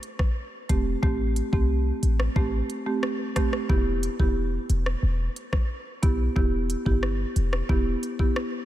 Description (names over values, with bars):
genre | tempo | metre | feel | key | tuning
dancehall | 90 BPM | 4/4 | straight | E minor | A4 = 440 Hz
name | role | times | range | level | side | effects
island pop drum kit | drums | 0.0-8.5 s | hi-hat, kick drum, rim click | -27 LUFS | equal | overdrive
marimba with medium mallets | accompaniment | 0.7-8.4 s | A3 to G4 | -29 LUFS | right 2 dB | none
clean 808-style bass | bass | 0.7-8.0 s | E1 to C2 | -25 LUFS | equal | none
room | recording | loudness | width
light reverb, digital ambience | none | -23 LUFS | side -13 dB against mid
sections
0.0-8.7 A section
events
none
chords
0.0 Am7; 3.7 Em